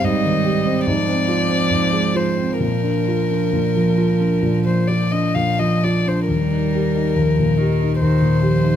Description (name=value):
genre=classical, slow romantic movement for piano trio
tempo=63-74 BPM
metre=4/4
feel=rubato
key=Eb major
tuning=A4 = 439 Hz
part: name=warm violin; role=melody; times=0.0-8.8 s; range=Bb4 to F5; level=-22 LUFS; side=left 6 dB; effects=none
part: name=clear cello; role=second line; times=0.0-8.8 s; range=Eb3 to G3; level=-22 LUFS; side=right 7 dB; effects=none
part: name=warm concert grand piano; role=accompaniment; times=0.0-8.8 s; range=Eb2 to G4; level=-18 LUFS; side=left 1 dB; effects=none
room=moderate recital hall reverb, RT60 1.7 s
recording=close, detailed microphones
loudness=-16 LUFS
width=side -10 dB against mid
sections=0.0-8.8 A section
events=none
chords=0.0 Abmaj7; 0.9 Fm/Ab; 2.6 Bb; 6.3 Eb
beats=0.03 0.86 1.71 | 2.61 3.53 4.44 5.36 | 6.29 7.17 8.02